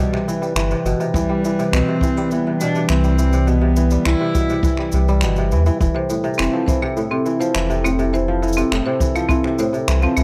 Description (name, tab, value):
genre	folktronica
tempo	103 BPM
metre	4/4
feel	straight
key	C major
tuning	A4 = 440 Hz
part	rich cello	melody	0.0-4.9 s	G3 to E4	-25 LUFS	equal	tape echo
part	warbly tape-like pad	sustained chords	0.1-10.2 s	E3 to B4	-27 LUFS	equal	chorus, built-in reverb
part	kora	arpeggios	0.0-10.2 s	A2 to G3	-24 LUFS	equal	tape echo
part	finger snaps, cabasa and claves	drums	0.1-10.2 s	none	-30 LUFS	equal	none
part	warm sub bass	bass	0.6-10.2 s	F1 to E2	-20 LUFS	equal	none
part	kick drum	drums	1.1-9.4 s	none	-23 LUFS	equal	none
part	marimba with hard mallets	second line	6.0-10.2 s	C4 to C5	-25 LUFS	equal	vintage 12-bit sampler grit, tape echo
room	little or no reverb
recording	dry, close 1970s-style studio recording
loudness	-18 LUFS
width	mono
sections	0.0-10.2 A section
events	none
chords	0.0 Cmaj7; 5.8 Fmaj7